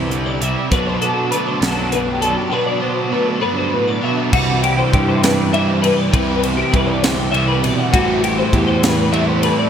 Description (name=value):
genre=math rock and midwest emo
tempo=67 BPM (dotted quarters)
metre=6/8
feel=straight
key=unclear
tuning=A4 = 436 Hz
part: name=twelve-string electric guitar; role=accompaniment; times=0.0-9.7 s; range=E2 to A4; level=-22 LUFS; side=right 4 dB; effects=ensemble chorus
part: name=twelve-string electric guitar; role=arpeggios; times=0.0-9.7 s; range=F#4 to F#5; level=-20 LUFS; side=left 4 dB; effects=ensemble chorus
part: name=crunchy overdriven guitar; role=riff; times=0.0-9.7 s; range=A2 to E4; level=-20 LUFS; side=right 1 dB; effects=wide subtle chorus
part: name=fuzz picked electric bass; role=bass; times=0.0-9.5 s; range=A1 to G2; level=-21 LUFS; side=equal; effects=overdrive
part: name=crisp fusion drum kit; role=drums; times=0.1-9.6 s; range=crash cymbal, hi-hat, kick drum, ride cymbal, snare drum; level=-21 LUFS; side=equal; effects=gated reverb
room=light reverb, small room ambience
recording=bright 1980s-style digital production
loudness=-14 LUFS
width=side -8 dB against mid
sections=0.0-4.3 A section; 4.3-9.7 B section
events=none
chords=0.0 Cmaj7; 0.7 Bm7; 4.3 Cmaj9; 7.9 Am9